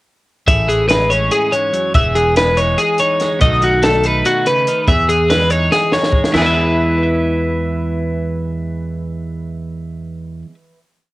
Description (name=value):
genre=math rock and midwest emo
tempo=287 BPM (eighths)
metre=7/8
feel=straight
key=E major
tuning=A4 = 439 Hz
part: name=twelve-string electric guitar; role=accompaniment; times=0.5-10.8 s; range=E2 to E5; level=-22 LUFS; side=right 4 dB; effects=cassette tape
part: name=twelve-string electric guitar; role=arpeggios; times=0.5-10.5 s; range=E4 to E5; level=-15 LUFS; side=left 1 dB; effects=cassette tape
part: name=fingered electric bass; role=bass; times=0.5-10.4 s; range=E1 to E2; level=-20 LUFS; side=equal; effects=none
part: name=compact cocktail drum kit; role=drums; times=0.5-6.4 s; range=china cymbal, hi-hat, kick drum, snare drum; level=-18 LUFS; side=equal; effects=none
room=studio reverb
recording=home recording on cassette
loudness=-13 LUFS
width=side -19 dB against mid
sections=0.5-6.3 A section; 6.3-9.3 final chord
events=drum fill 5.7-6.3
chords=0.5 Amaj7; 2.0 Emaj7; 3.4 B7; 4.9 Emaj7; 6.3 E